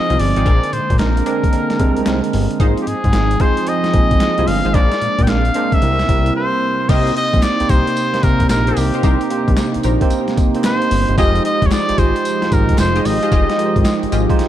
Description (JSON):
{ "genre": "R&B, new jack swing", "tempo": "112 BPM", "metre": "4/4", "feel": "swing 65% on 16ths", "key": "unclear", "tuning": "A4 = 440 Hz", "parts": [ { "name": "clear trumpet", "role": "melody", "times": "0.0-14.1 s", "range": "G4 to G5", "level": "-20 LUFS", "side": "left 1 dB", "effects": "shimmer reverb" }, { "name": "tine electric piano", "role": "accompaniment", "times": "0.0-14.5 s", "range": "F3 to C5", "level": "-20 LUFS", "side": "right 5 dB", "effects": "none" }, { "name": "warm analog pad", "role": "sustained chords", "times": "0.0-14.5 s", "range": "C3 to G4", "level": "-24 LUFS", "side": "equal", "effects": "chorus" }, { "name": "funky polysynth comp", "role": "stabs", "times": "0.1-14.3 s", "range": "C4 to Eb5", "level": "-26 LUFS", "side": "left 1 dB", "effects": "chorus, ping-pong delay, shimmer reverb" }, { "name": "fat analog bass", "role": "bass", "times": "0.1-14.3 s", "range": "F1 to Bb2", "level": "-18 LUFS", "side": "left 1 dB", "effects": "none" }, { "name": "boom bap sampler-style drum kit", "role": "drums", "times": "0.1-14.5 s", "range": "crash cymbal, hi-hat, kick drum, snare drum, tambourine", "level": "-18 LUFS", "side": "left 1 dB", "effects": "overdrive" }, { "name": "group handclap", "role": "percussion", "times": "1.0-14.0 s", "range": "none", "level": "-38 LUFS", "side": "left 6 dB", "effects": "none" } ], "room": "light reverb, digital ambience", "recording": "dark, warm production", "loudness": "-13 LUFS", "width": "side -12 dB against mid", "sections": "0.0-6.9 A section; 6.9-14.5 B section", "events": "break 6.4-6.9", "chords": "0.5 Bb9; 2.6 Ab6; 4.7 Bb9; 5.8 C7; 6.9 Cm7; 11.2 Fm9" }